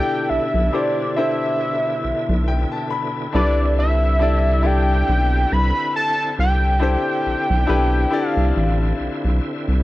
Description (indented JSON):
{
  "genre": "R&B, neo-soul",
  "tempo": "69 BPM",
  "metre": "4/4",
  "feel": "swing 56% on 16ths",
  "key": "C major",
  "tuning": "A4 = 438 Hz",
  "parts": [
    { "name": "fat analog lead", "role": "melody", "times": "0.0-9.4 s", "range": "D5 to B5", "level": "-22 LUFS", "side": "right 1 dB", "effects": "none" },
    { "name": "bright concert grand piano", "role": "accompaniment", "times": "0.0-9.8 s", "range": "D4 to B5", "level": "-24 LUFS", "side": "left 4 dB", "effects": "none" },
    { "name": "bright tonewheel organ", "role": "sustained chords", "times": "0.0-9.8 s", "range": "B2 to E4", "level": "-29 LUFS", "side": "right 1 dB", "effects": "overdrive, chorus vibrato, fast rotary speaker" },
    { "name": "rubbery square bass", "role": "bass", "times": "0.3-9.8 s", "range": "A1 to C2", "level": "-18 LUFS", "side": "equal", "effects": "none" }
  ],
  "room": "little or no reverb",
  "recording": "dry, close 1970s-style studio recording",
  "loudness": "-17 LUFS",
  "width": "side -16 dB against mid",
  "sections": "0.0-9.8 A section",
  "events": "grand piano fill 2.0-3.3",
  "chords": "0.0 Cmaj9"
}